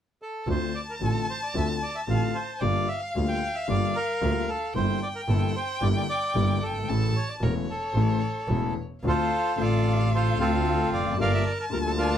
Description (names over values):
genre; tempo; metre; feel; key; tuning
tango; 112 BPM; 4/4; rubato; D minor; A4 = 440 Hz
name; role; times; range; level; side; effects
bandoneon; melody; 0.2-12.2 s; C4 to G5; -29 LUFS; right 1 dB; none
rich violin; second line; 0.5-12.2 s; C#5 to A5; -34 LUFS; left 2 dB; none
warm concert grand piano; accompaniment; 0.5-12.2 s; E1 to F4; -29 LUFS; left 4 dB; none
clear double bass; bass; 0.5-12.2 s; E1 to D2; -27 LUFS; right 2 dB; none
room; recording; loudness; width
little or no reverb; close, detailed microphones; -24 LUFS; side -9 dB against mid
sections
0.5-9.0 A section; 9.0-12.2 B section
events
none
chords
0.5 Dm7; 2.6 Gm7; 4.7 Em7b5/G; 6.9 A; 9.0 Dm7; 11.2 Gm7